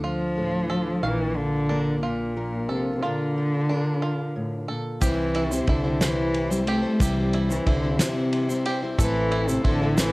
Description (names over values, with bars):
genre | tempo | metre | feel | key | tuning
indie folk with a building arrangement | 60 BPM (dotted quarters) | 6/8 | straight | C mixolydian | A4 = 440 Hz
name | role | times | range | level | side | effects
warm cello | melody | 0.0-10.1 s | Bb2 to A3 | -25 LUFS | equal | cassette tape
fingerpicked steel-string acoustic guitar | accompaniment | 0.0-5.0 s | A2 to Bb4 | -30 LUFS | left 1 dB | cassette tape
bluegrass banjo | arpeggios | 0.0-10.1 s | D4 to F5 | -33 LUFS | right 3 dB | cassette tape
hollow-body short-scale fingered electric bass | bass | 0.0-10.1 s | A1 to D2 | -30 LUFS | equal | none
picked plugged-in steel-string acoustic guitar | accompaniment | 5.0-10.1 s | A2 to C5 | -28 LUFS | left 2 dB | cassette tape
cloth-damped thuddy drum kit | drums | 5.0-10.1 s | kick drum, ride cymbal, snare drum | -26 LUFS | equal | cassette tape
egg shaker | percussion | 5.0-10.1 s | none | -35 LUFS | right 3 dB | none
mellow tonewheel organ | sustained chords | 9.0-10.1 s | A4 to C6 | -35 LUFS | right 1 dB | none
room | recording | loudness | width
light reverb | home recording on cassette | -22 LUFS | side -22 dB against mid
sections
0.0-5.0 A section; 5.0-10.1 B section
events
none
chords
0.0 Dm; 1.0 Bb; 5.0 C; 9.0 Am